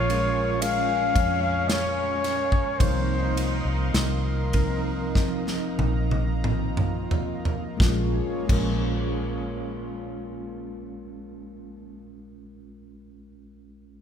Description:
pop ballad; 43-58 BPM; 4/4; straight; Bb minor; A4 = 442 Hz
warm flugelhorn; melody; 0.0-5.7 s; Bb4 to F5; -27 LUFS; left 4 dB
mellow French horn section; second line; 0.0-11.8 s; Db4 to F4; -36 LUFS; right 3 dB
mellow tine electric piano; accompaniment; 0.0-14.0 s; Bb1 to Bb4; -32 LUFS; right 2 dB; medium stereo tremolo
warm analog pad; sustained chords; 0.0-11.1 s; Bb3 to Db6; -37 LUFS; right 1 dB; chorus
fingerpicked steel-string acoustic guitar; arpeggios; 0.0-12.1 s; Bb2 to F4; -36 LUFS; left 6 dB
vintage muted fingered electric bass; bass; 0.0-11.8 s; F1 to F2; -28 LUFS; equal
modern studio drum kit; drums; 0.1-8.9 s; crash cymbal, kick drum, ride cymbal, snare drum, toms; -27 LUFS; equal
moderate church reverb, RT60 3.0 s; recorded in a church or concert hall; -22 LUFS; side -8 dB against mid
0.0-7.8 A section; 7.8-13.3 B section
slowing down 0.0-7.8; drum fill 5.2-7.8
0.0 Bbm7; 2.8 F7sus4/C; 7.8 Bbm7
0.63 1.70 | 2.80 3.95 5.16 6.44 | 7.80 9.19 10.55 11.92

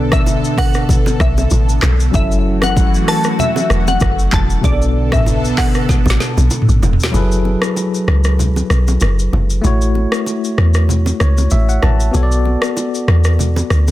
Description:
afrobeats; 96 BPM; 4/4; swing 55% on 16ths; F# minor; A4 = 440 Hz
glassy wavetable pluck; melody; 0.0-6.5 s; D5 to A5; -21 LUFS; left 1 dB; chorus, tape echo
bell-like tine electric piano; accompaniment; 0.0-13.9 s; B2 to A5; -20 LUFS; left 2 dB; medium stereo tremolo
lush unison pad; sustained chords; 0.0-7.1 s; D3 to A4; -22 LUFS; left 1 dB; chorus, phaser
deep log drum bass; bass; 0.0-13.9 s; E1 to E2; -14 LUFS; equal
afro-pop drum kit; drums; 0.1-13.9 s; handclaps, hi-hat, kick drum, rim click, shaker, snare drum, toms; -17 LUFS; equal; overdrive
bongos and congas; percussion; 0.1-13.9 s; -23 LUFS; right 4 dB
little or no reverb; dense, heavily limited modern master; -12 LUFS; side -15 dB against mid
0.0-7.1 A section; 7.1-13.9 B section
drum fill 5.9-7.1; kick muted 7.1-13.9; tine electric piano fill 10.9-12.1
0.0 Bm7; 2.1 F#m7; 4.6 Bm7; 7.1 F#m11; 9.6 A6; 12.1 Bm7
0.27 0.89 1.52 | 2.14 2.77 3.39 4.02 | 4.64 5.27 5.89 6.52 | 7.14 7.77 8.39 9.02 | 9.64 10.27 10.89 11.52 | 12.14 12.77 13.39

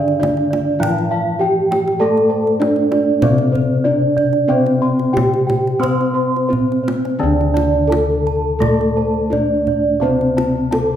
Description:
Javanese gamelan; 85-100 BPM; 4/4; straight; D slendro; A4 = 440 Hz
gamelan-type bronze metallophone; melody; 0.0-11.0 s; C4-25c to C5-25c; -18 LUFS; equal
gamelan-type bronze metallophone; accompaniment; 0.0-11.0 s; C3-25c to C4-25c; -22 LUFS; left 2 dB
gamelan-type bossed gongs; arpeggios; 0.0-11.0 s; C5-25c to C6-25c; -24 LUFS; left 5 dB
gamelan-type bronze metallophone; arpeggios; 0.0-11.0 s; C5-25c to C6-25c; -22 LUFS; right 6 dB
gamelan-type bossed gongs; bass; 0.0-11.0 s; D2 to C5-25c; -22 LUFS; left 1 dB
kendang; percussion; 0.1-10.9 s; -24 LUFS; right 1 dB
wet recital hall reverb, RT60 1.4 s; minimal, uncompressed stereo recording; -14 LUFS; side -10 dB against mid
0.0-7.2 A section; 7.2-11.0 B section
0.20 0.80 1.40 | 2.00 2.60 3.22 3.85 | 4.49 5.14 5.81 6.49 | 7.19 7.90 8.60 9.31 | 10.02 10.72

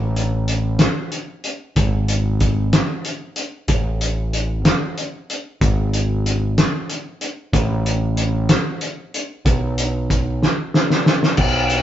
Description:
indie rock; 62 BPM (dotted quarters); 6/8; straight; A4 = 440 Hz
growling picked electric bass; bass; 0.0-11.8 s; G#1 to B1; -20 LUFS; equal; overdrive
cloth-damped thuddy drum kit; drums; 0.2-11.8 s; crash cymbal, hi-hat, kick drum, snare drum; -18 LUFS; equal
light reverb; band playing live in one room, nothing above 7.7 kHz; -17 LUFS; side -11 dB against mid
0.0-11.4 A section
drum fill 10.4-11.4
0.81 | 1.78 2.74 | 3.70 4.66 | 5.62 6.58 | 7.54 8.50 | 9.46 10.42 | 11.38

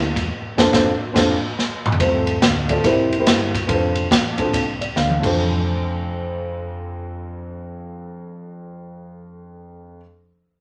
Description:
uptempo gospel; 142 BPM; 4/4; swing 65% on 8ths; F major; A4 = 440 Hz
dark concert grand piano; accompaniment; 0.0-10.0 s; F2 to F5; -25 LUFS; equal
hollow-body short-scale fingered electric bass; bass; 0.0-10.0 s; E1 to D2; -29 LUFS; equal
swinging big-band drum kit; drums; 0.2-5.3 s; crash cymbal, kick drum, ride cymbal, snare drum, toms; -22 LUFS; equal
moderate studio reverb, RT60 0.5 s; -19 LUFS; mono
0.0-2.0 A section; 2.0-5.4 B section; 5.4-8.8 C section
band accent 0.3-2.0; drum fill 1.6-2.0, 5.0-5.4
0.3 F6; 2.0 F/C; 2.8 C7; 3.7 F6
| 0.30 0.73 1.15 1.57 | 2.00 2.42 2.84 3.27 | 3.69 4.11 4.54 4.96 | 5.38 5.81 6.23 6.65 | 7.08 7.50 7.92 8.35

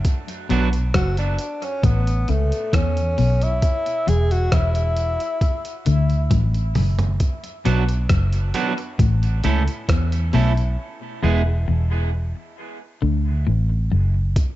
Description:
dub reggae; 67 BPM; 4/4; straight; A4 = 440 Hz
vintage muted fingered electric bass; bass; 0.0-14.3 s; E1 to E2; -19 LUFS; equal
dusty soul sampler-style drum kit; drums; 0.0-14.6 s; hi-hat, kick drum, rim click, toms; -22 LUFS; equal
electric guitar at the edge of break-up; accompaniment; 0.5-0.7, 7.7-11.4 s; F#3 to A4; -27 LUFS; right 5 dB; dub echo
clean electric guitar; riff; 0.5-14.2 s; E2 to E3; -26 LUFS; left 5 dB
breathy tenor saxophone; melody; 1.0-5.9 s; A3 to G#4; -25 LUFS; left 1 dB; dub echo
light reverb; dark, warm production, nothing above 7.9 kHz; -18 LUFS; side -15 dB against mid
0.0-14.6 A section
break 0.1-7.2; drum fill 6.3-7.2; part muted 10.8-14.4
0.1 Bm; 1.8 A; 3.6 N.C.; 5.4 D; 7.2 Bm; 9.0 A; 10.8 E; 12.6 D
| 0.05 0.94 1.84 2.73 | 3.63 4.52 5.42 6.31 | 7.21 8.10 8.99 9.89 | 10.79 11.68 12.57 13.47 | 14.36

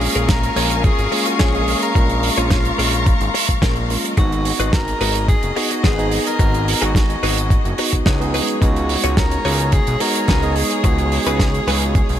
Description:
nu-disco, nu disco; 108 BPM; 4/4; straight; A4 = 440 Hz
breathy tenor saxophone; melody; 0.0-12.2 s; F4 to Bb4; -24 LUFS; equal; ping-pong delay
bright tine electric piano; accompaniment; 0.0-12.2 s; Ab3 to Ab4; -24 LUFS; right 1 dB; analog delay
clear studio string section; sustained chords; 0.0-12.2 s; Ab4 to Db6; -26 LUFS; left 4 dB; sidechain pumping
fat analog bass; bass; 0.0-12.2 s; Gb1 to Db2; -21 LUFS; equal
damped 70s drum kit; drums; 0.0-12.2 s; hi-hat, snare drum; -23 LUFS; right 4 dB
direct-recorded clean electric guitar; riff; 0.2-12.0 s; Db4 to Db5; -28 LUFS; left 3 dB; wide subtle chorus, analog delay
electronic kick drum; drums; 0.3-12.1 s; -17 LUFS; equal; overdrive
light reverb, small room ambience; -15 LUFS; side -11 dB against mid
0.0-12.2 A section
0.0 Bbm7; 4.2 Abm7; 8.3 Db7sus4
0.28 0.84 1.40 | 1.95 2.51 3.06 3.62 | 4.17 4.73 5.28 5.84 | 6.39 6.95 7.51 8.06 | 8.62 9.17 9.73 10.28 | 10.84 11.39 11.95

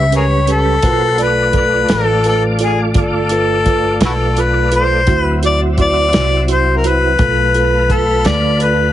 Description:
slow blues; 57 BPM (dotted quarters); 12/8; straight; A4 = 440 Hz
mellow harmonica; melody; 0.0-8.9 s; E4 to E5; -15 LUFS; left 2 dB
mellow tine electric piano; accompaniment; 0.0-8.9 s; C#4 to D5; -20 LUFS; right 5 dB; medium stereo tremolo
tonewheel organ; sustained chords; 0.0-8.9 s; F#3 to D5; -21 LUFS; left 1 dB; chorus vibrato, fast rotary speaker
upright bass; bass; 0.0-8.9 s; G1 to D2; -17 LUFS; equal
warm soul drum kit; drums; 0.1-8.8 s; hi-hat, kick drum, snare drum; -18 LUFS; equal
little or no reverb; heavily compressed radio sound, multiband compression, nothing above 11.0 kHz; -11 LUFS; side -12 dB against mid
0.0-8.9 A section
0.0 A9; 0.8 G9; 5.1 D9; 7.2 Bm7b5
| 0.83 1.89 2.95 4.01 | 5.08 6.13 7.19 8.25

